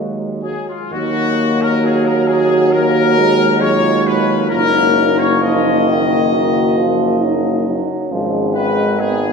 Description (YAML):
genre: classical, hymn-like piece for brass band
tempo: 67 BPM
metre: 4/4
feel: rubato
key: Eb minor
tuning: A4 = 440 Hz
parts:
  - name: mellow French horn section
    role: second line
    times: 0.0-9.3 s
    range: Cb4 to Gb4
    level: -20 LUFS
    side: right 3 dB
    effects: none
  - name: clear euphonium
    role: accompaniment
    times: 0.0-9.3 s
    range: Eb3 to Ab3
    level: -21 LUFS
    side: right 2 dB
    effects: none
  - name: mellow euphonium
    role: accompaniment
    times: 0.0-9.3 s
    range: Gb3 to Cb4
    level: -20 LUFS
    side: left 3 dB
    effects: none
  - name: clear tuba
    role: bass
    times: 0.0-9.3 s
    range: Gb1 to Eb2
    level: -20 LUFS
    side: right 1 dB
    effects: none
  - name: clear trumpet section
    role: melody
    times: 0.4-9.3 s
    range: F4 to Eb5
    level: -18 LUFS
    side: left 4 dB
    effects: none
room: wet church reverb, RT60 3.3 s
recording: recorded in a church or concert hall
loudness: -12 LUFS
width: side -5 dB against mid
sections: 0.9-9.3 A section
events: none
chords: 0.0 Ebm; 4.5 Ebm/Gb; 8.1 Abm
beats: | 0.91 1.82 2.71 3.61 | 4.51 5.41 6.32 7.22 | 8.11 8.98